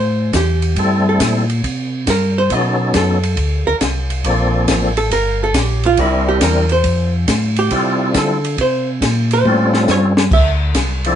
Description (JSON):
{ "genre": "soul jazz organ trio", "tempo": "138 BPM", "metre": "4/4", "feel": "swing 68% on 8ths", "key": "F major", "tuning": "A4 = 436 Hz", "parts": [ { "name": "archtop guitar, miked and amplified", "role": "accompaniment", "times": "0.0-10.5 s", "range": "E4 to E5", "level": "-18 LUFS", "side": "right 3 dB", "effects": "none" }, { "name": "mellow tonewheel organ", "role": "bass", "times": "0.0-11.2 s", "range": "G1 to D3", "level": "-17 LUFS", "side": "equal", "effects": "chorus vibrato" }, { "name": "compact cocktail drum kit", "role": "drums", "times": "0.3-11.1 s", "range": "crash cymbal, hi-hat, kick drum, ride cymbal, snare drum, toms", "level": "-20 LUFS", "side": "equal", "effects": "none" }, { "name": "percussive tonewheel organ", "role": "melody", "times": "0.8-11.2 s", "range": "F3 to Bb4", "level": "-17 LUFS", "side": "left 2 dB", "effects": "slow rotary speaker, overdrive, chorus vibrato" } ], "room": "moderate studio reverb, RT60 0.6 s", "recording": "band playing live in one room, nothing above 10.4 kHz", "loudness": "-13 LUFS", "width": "side -9 dB against mid", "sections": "0.0-10.3 A section", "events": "hollow-body jazz guitar solo 0.0-11.2; drum fill 9.5-10.3", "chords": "0.0 Am7; 1.6 C5; 2.5 B9; 3.4 Bbmaj7; 5.1 Gm; 6.0 C7; 6.9 Fmaj7; 9.5 A7alt; 10.3 Dm9" }